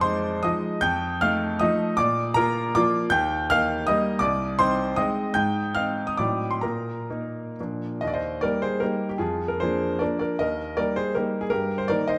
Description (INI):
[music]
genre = classical, romantic triple-time dance for piano with dotted rhythms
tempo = 118-172 BPM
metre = 3/4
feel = rubato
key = Eb major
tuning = A4 = 440 Hz
[part]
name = clear grand piano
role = solo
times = 0.0-12.2 s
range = C2 to G6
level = -25 LUFS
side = equal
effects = none
[sound]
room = moderate recital hall reverb, RT60 1.6 s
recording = none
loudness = -25 LUFS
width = mono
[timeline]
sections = 0.0-8.0 A section; 8.0-12.2 B section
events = none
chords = 0.0 Fm7; 0.8 F7; 2.0 Bb; 3.1 Eb; 4.2 Ab/C; 5.4 Ab; 6.2 Adim7; 6.6 Eb5/Bb; 7.6 Bb; 8.0 Eb; 9.2 Bb7/F; 10.4 Eb; 11.5 Eb/G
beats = 0.02 0.43 | 0.82 1.22 1.61 | 1.98 2.36 2.75 | 3.11 3.49 3.87 | 4.22 4.59 4.97 | 5.36 5.76 6.20 | 6.63 7.10 7.59 | 8.02 8.42 8.83 | 9.22 9.62 10.01 | 10.39 10.78 11.15 | 11.51 11.89